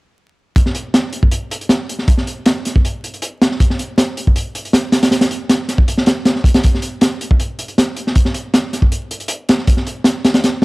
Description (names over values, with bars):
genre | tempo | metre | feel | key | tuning
drum and bass | 158 BPM | 4/4 | straight | none | none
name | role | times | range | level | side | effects
crunchy breakbeat drum kit | drums | 0.6-10.6 s | hi-hat, kick drum, snare drum | -13 LUFS | equal | none
room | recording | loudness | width
light reverb | dry, gritty hardware recording, vinyl crackle | -13 LUFS | side -24 dB against mid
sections
0.6-10.6 A section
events
none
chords
none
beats
| 0.56 0.94 1.32 1.70 | 2.08 2.46 2.84 3.22 | 3.60 3.98 4.36 4.74 | 5.12 5.50 5.88 6.26 | 6.64 7.02 7.40 7.78 | 8.16 8.54 8.92 9.30 | 9.68 10.05 10.44